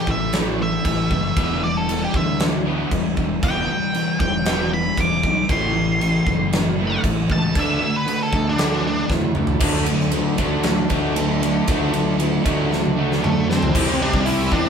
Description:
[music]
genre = quiet-loud alternative rock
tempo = 116 BPM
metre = 4/4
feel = straight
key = unclear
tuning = A4 = 441 Hz
[part]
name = octave-fuzz lead guitar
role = melody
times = 0.0-9.1, 13.2-14.7 s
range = A3 to D6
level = -24 LUFS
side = right 1 dB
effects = distortion
[part]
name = distorted electric guitar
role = riff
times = 0.0-14.7 s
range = A2 to E4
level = -24 LUFS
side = left 6 dB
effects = distortion
[part]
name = thick fuzz guitar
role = riff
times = 0.0-14.7 s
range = E2 to D4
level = -26 LUFS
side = right 7 dB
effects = distortion
[part]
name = fuzz fingered electric bass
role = bass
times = 0.1-14.7 s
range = E1 to C3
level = -25 LUFS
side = equal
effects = overdrive
[part]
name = huge arena drum kit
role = drums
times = 0.1-14.6 s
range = crash cymbal, hi-hat, kick drum, ride cymbal, snare drum, toms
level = -22 LUFS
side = right 1 dB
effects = none
[part]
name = crunchy overdriven guitar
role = riff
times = 9.6-14.7 s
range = C3 to D4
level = -26 LUFS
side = right 1 dB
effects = none
[sound]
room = moderate studio reverb, RT60 0.7 s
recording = band playing live in one room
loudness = -17 LUFS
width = side -7 dB against mid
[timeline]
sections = 0.0-9.6 A section; 9.6-13.7 B section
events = lead electric guitar solo 0.0-9.6; drum fill 9.1-9.6, 12.7-13.7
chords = 0.0 A5; 1.4 Em; 5.5 Am; 7.6 D5; 9.6 D; 13.7 C

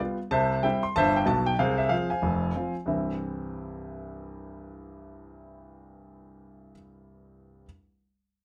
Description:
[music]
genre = jazz, stride piano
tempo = 188 BPM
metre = 4/4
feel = swing 64% on 8ths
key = C major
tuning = A4 = 442 Hz
[part]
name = clear grand piano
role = solo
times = 0.0-7.7 s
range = F1 to C6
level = -28 LUFS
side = equal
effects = none
[sound]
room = moderate studio reverb, RT60 0.6 s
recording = none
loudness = -27 LUFS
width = mono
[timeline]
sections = 0.0-2.9 A section; 2.9-5.4 B section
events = none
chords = 0.3 C; 1.6 Fm/C; 2.9 C

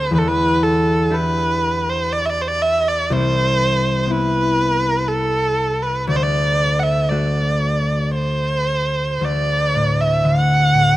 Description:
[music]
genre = celtic folk, Celtic slow air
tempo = 59 BPM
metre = 3/4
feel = rubato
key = D mixolydian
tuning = A4 = 440 Hz
[part]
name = warm erhu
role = melody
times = 0.0-11.0 s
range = A4 to F#5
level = -18 LUFS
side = right 2 dB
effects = none
[part]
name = concert harp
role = accompaniment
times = 0.0-11.0 s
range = C2 to G4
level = -19 LUFS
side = left 1 dB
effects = none
[sound]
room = light reverb, small room ambience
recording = rough home demo mix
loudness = -16 LUFS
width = side -15 dB against mid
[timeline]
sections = 0.0-9.2 A section; 9.2-11.0 B section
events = none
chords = 0.1 Em7; 3.1 Cmaj7; 6.1 D

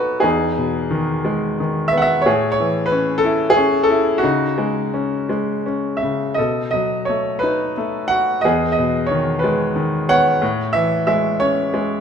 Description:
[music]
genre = classical, lyrical solo piano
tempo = 60 BPM (dotted quarters)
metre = 6/8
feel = rubato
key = unclear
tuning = A4 = 442 Hz
[part]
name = clear grand piano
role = solo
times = 0.0-12.0 s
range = E2 to F#5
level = -16 LUFS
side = equal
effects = none
[sound]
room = moderate recital hall reverb, RT60 1.6 s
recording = minimal, uncompressed stereo recording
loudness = -16 LUFS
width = side -7 dB against mid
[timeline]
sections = 0.0-12.0 A section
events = none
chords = 0.2 Emaj7; 2.3 Amaj7; 4.2 C#sus2; 6.4 B7; 8.4 Emaj7; 10.4 Amaj7

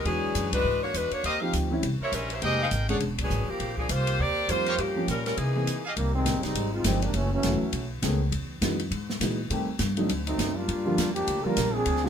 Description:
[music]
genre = jazz, big band swing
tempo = 203 BPM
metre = 4/4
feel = swing 60% on 8ths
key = unclear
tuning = A4 = 439 Hz
[part]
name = clear saxophone section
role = melody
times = 0.0-5.8 s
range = E3 to F5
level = -28 LUFS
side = equal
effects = none
[part]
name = warm baby grand piano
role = accompaniment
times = 0.0-12.1 s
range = D3 to Ab4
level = -30 LUFS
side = equal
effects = none
[part]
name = upright bass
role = bass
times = 0.0-12.1 s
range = E1 to C3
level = -30 LUFS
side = equal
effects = none
[part]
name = open jazz drum kit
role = drums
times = 0.1-12.1 s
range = hi-hat, kick drum, ride cymbal, snare drum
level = -33 LUFS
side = left 1 dB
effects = none
[part]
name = bright trumpet section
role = stabs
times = 1.2-5.9 s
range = G4 to G5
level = -32 LUFS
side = right 1 dB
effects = none
[part]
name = clear trombone section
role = second line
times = 6.0-7.9, 10.3-12.1 s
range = C3 to Bb4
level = -28 LUFS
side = right 1 dB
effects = none
[sound]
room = moderate club reverb, RT60 0.8 s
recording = minimal, uncompressed stereo recording, faint mains hum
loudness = -24 LUFS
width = side -8 dB against mid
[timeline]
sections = 0.0-6.0 A section; 6.0-12.1 B section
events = band accent 0.5, 3.2; break 5.7; trombone section solo 6.0-12.1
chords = 0.1 E9; 1.2 Eb69; 1.8 C7b9; 2.4 Fm11; 3.0 E9; 3.6 Eb69; 4.8 Gm7b5; 5.4 C7alt; 6.0 Fm9; 7.1 Gbm7; 7.7 B13; 8.3 Emaj9; 9.5 Am7b5; 10.1 D7b9; 10.7 Gm7

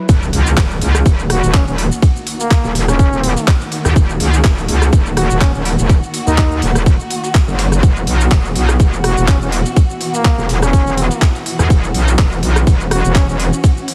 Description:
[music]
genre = bass house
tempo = 124 BPM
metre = 4/4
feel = swing 55% on 16ths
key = Eb phrygian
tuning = A4 = 440 Hz
[part]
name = noise sweep and impact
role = sound effects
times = 0.0-2.0 s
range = none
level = -27 LUFS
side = equal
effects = none
[part]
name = dark studio string section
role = sustained chords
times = 0.1-13.9 s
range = B2 to Gb4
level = -26 LUFS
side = equal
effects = sidechain pumping
[part]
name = metallic wobble bass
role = bass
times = 0.1-13.5 s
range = Eb1 to E2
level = -17 LUFS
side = equal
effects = distortion, chorus, overdrive, sidechain pumping
[part]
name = breakbeat sampler-style drum kit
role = drums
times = 0.1-13.9 s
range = hi-hat, ride cymbal, snare drum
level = -34 LUFS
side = equal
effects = none
[part]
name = electronic kick drum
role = drums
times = 0.1-13.7 s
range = none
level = -13 LUFS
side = equal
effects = none
[part]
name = garage drum kit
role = drums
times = 0.1-13.9 s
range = handclaps, hi-hat, rim click, shaker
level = -24 LUFS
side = equal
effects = none
[part]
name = trumpet with bucket mute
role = melody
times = 1.3-13.4 s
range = Bb3 to Gb4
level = -24 LUFS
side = equal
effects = delay
[sound]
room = little or no reverb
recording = heavily compressed radio sound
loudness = -14 LUFS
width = mono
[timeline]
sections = 0.1-13.9 A section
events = drop 0.1-13.9; impact 0.1-2.0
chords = 0.1 Ebm; 7.8 Esus2

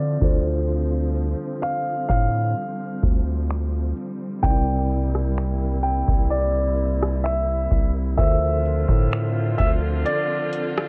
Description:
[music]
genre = contemporary R&B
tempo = 64 BPM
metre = 4/4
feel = straight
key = unclear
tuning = A4 = 440 Hz
[part]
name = clear grand piano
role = melody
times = 0.0-10.9 s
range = D5 to G5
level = -28 LUFS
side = equal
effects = delay
[part]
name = mellow tine electric piano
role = accompaniment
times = 0.0-10.9 s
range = C3 to D5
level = -31 LUFS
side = equal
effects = none
[part]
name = warm studio string section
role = sustained chords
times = 0.0-10.9 s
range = C3 to E5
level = -33 LUFS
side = equal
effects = none
[part]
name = long sustained 808-style bass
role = bass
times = 0.0-10.0 s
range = C2 to D3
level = -25 LUFS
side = equal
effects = none
[part]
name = booming analog drum machine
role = drums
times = 0.2-10.9 s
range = finger snaps, hi-hat, kick drum, rim click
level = -23 LUFS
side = equal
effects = none
[sound]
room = digital ambience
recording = low-pass filter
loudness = -22 LUFS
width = mono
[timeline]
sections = 0.0-10.9 A section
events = filter sweep 0.0-10.9; kick muted 10.1-10.9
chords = 0.2 G7sus4/D; 4.4 C7; 8.2 Bbmaj9/D

